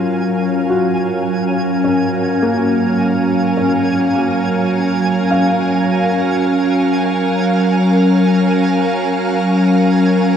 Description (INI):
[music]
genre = ambient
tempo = 52 BPM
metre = 4/4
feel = straight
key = unclear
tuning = A4 = 439 Hz
[part]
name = soft additive organ-like pad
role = sustained chords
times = 0.0-10.4 s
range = Gb3 to F5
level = -14 LUFS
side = equal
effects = ensemble chorus, built-in reverb
[part]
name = felt-muted upright piano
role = arpeggios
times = 0.0-10.4 s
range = Bb3 to F5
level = -21 LUFS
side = left 1 dB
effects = diffuse ambient delay
[part]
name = twinkling granular texture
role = texture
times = 0.0-10.4 s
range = Ab5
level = -25 LUFS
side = right 2 dB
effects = built-in reverb
[sound]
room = wet huge ambient reverb, RT60 7.3 s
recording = dark, warm production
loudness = -13 LUFS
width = side -8 dB against mid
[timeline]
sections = 0.0-10.4 A section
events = fade-in on synth texture 0.0-10.4; filter sweep on ambient pad 0.0-10.4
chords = 0.0 Gbmaj7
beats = 0.70 1.86 3.01 | 4.17 5.32 6.47 7.63 | 8.78 9.94